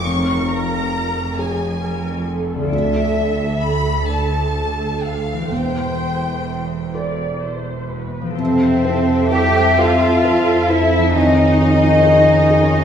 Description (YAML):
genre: cinematic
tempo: 41-46 BPM (dotted quarters)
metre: 6/8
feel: rubato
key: unclear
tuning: A4 = 437 Hz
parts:
  - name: warm studio violin section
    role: melody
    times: 0.0-12.8 s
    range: Eb5 to Db6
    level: -25 LUFS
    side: left 3 dB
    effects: none
  - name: dark studio viola section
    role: accompaniment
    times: 0.0-12.8 s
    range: C4 to D5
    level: -24 LUFS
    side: right 3 dB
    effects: none
  - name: felt-muted upright piano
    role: accompaniment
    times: 0.0-12.8 s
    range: D2 to D5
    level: -23 LUFS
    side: equal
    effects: none
  - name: concert harp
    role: arpeggios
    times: 0.0-12.8 s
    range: D3 to D5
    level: -26 LUFS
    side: left 3 dB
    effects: none
  - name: warm studio cello section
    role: bass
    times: 0.0-12.8 s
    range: D2 to G4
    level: -21 LUFS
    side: right 1 dB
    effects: none
  - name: warm studio double bass section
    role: bass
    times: 0.0-12.8 s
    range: E1 to F2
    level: -23 LUFS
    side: right 2 dB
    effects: none
  - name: mellow cor anglais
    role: second line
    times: 8.4-12.8 s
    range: Ab5 to A5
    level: -27 LUFS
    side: equal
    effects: none
  - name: mellow hollow silver concert flute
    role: second line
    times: 8.4-12.8 s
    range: C5 to G5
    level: -22 LUFS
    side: left 2 dB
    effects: none
  - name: warm clarinet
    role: second line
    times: 8.4-12.8 s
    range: Eb5 to E5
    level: -22 LUFS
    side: left 2 dB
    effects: none
  - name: warm studio violin section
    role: second line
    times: 8.4-12.8 s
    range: C5 to G5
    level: -24 LUFS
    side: left 3 dB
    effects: none
  - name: mellow French horn section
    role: sustained chords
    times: 8.4-12.8 s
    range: C3 to E4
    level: -22 LUFS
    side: left 2 dB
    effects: none
room: wet recital hall reverb, RT60 1.4 s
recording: recorded in a church or concert hall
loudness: -15 LUFS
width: side -8 dB against mid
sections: 0.0-8.4 A section; 8.4-12.8 A section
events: none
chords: 0.1 Dbadd9/F; 2.7 Dmadd9; 5.5 Am7/E; 8.4 Fmaj7; 11.2 Dbadd9/F